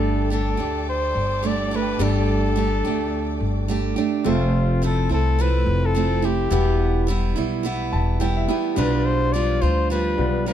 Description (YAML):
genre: acoustic pop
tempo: 106 BPM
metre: 4/4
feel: swing 60% on 16ths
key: unclear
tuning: A4 = 439 Hz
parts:
  - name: clear flugelhorn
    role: melody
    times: 0.0-10.5 s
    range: F4 to D5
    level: -25 LUFS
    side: left 4 dB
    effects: slapback echo, plate reverb
  - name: bright upright piano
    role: accompaniment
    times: 0.0-10.5 s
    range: G3 to A5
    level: -31 LUFS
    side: left 6 dB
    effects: none
  - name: picked steel-string acoustic guitar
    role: accompaniment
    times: 0.0-10.5 s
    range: E2 to G4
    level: -24 LUFS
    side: right 6 dB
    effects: none
  - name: warm studio string section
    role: sustained chords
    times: 0.0-4.2 s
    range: A4 to D6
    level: -35 LUFS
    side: right 1 dB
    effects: none
  - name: upright bass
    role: bass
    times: 0.0-10.5 s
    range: E1 to D2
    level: -22 LUFS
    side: left 1 dB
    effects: none
room: light reverb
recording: dark, warm production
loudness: -19 LUFS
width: side -10 dB against mid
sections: 0.0-4.3 A section; 4.3-10.5 B section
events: upright piano fill 7.6-8.8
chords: 0.0 Gsus2; 4.3 Fmaj7; 6.5 Em; 8.8 G7/B